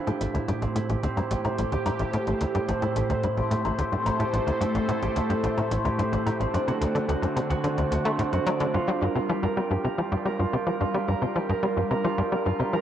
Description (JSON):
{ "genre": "ambient, sequencer-driven space music", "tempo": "109 BPM", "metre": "4/4", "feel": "straight", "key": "G minor from 8.7 s", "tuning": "A4 = 440 Hz", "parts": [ { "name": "phased analog pad", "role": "sustained chords", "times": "0.0-12.8 s", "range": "A2 to C5", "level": "-30 LUFS", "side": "left 1 dB", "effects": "phaser, chorus" }, { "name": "concert harp", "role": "arpeggios", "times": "0.0-12.8 s", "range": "C4 to G5", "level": "-29 LUFS", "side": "right 4 dB", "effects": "auto-pan, ping-pong delay" }, { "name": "tight sequencer bass", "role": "riff", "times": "0.1-12.8 s", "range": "A1 to A3", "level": "-27 LUFS", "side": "left 1 dB", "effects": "ping-pong delay" }, { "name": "electronic hi-hat and woodblock", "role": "percussion", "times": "0.1-8.7 s", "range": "none", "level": "-40 LUFS", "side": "left 2 dB", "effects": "cassette tape, ping-pong delay" } ], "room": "wet spring reverb, RT60 2.5 s", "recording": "home recording on cassette", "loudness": "-24 LUFS", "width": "side -10 dB against mid", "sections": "0.0-8.7 A section; 8.7-12.8 B section", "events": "filter sweep on analog synth bass 0.0-8.7", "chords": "0.0 Am7; 6.5 D7; 8.7 Gm7", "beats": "0.48 1.03 1.58 | 2.14 2.69 3.24 3.79 | 4.34 4.89 5.44 5.99 | 6.54 7.09 7.64 8.19 | 8.74 9.29 9.84 10.39 | 10.94 11.49 12.04 12.59" }